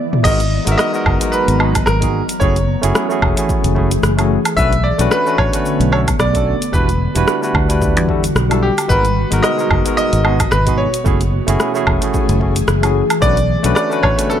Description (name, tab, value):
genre	sunset chillout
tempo	111 BPM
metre	4/4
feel	swing 56% on 16ths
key	G# phrygian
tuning	A4 = 440 Hz
part	ethereal airy pad	sustained chords	0.0-14.4 s	B2 to A#5	-22 LUFS	left 1 dB	ensemble chorus, built-in reverb
part	deep house drum kit	drums	0.1-14.4 s	crash cymbal, hi-hat, rim click, shaker, toms, woodblock	-20 LUFS	right 1 dB	low-pass filter on perc, low-pass filter on toms, low-pass filter on cymbals, low-pass filter on hats, low-pass filter on snare
part	clear grand piano	melody	0.2-14.4 s	G4 to E5	-19 LUFS	equal	tape echo
part	barky tine electric piano	accompaniment	0.2-14.4 s	G3 to B4	-20 LUFS	moving between left 6 dB and right 7 dB	medium stereo tremolo, auto-pan, digital delay
part	fingered electric bass	bass	0.2-14.1 s	E1 to E2	-17 LUFS	equal	none
part	electronic kick drum	drums	0.2-14.2 s	none	-20 LUFS	equal	none
room	light reverb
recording	none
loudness	-13 LUFS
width	side -10 dB against mid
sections	0.3-14.4 A section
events	break 0.0; drum fill 0.0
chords	0.3 G#m9; 2.4 F#m9; 4.6 Bm9; 6.7 Em9; 8.9 G#m9; 11.1 F#m9; 13.2 Bm9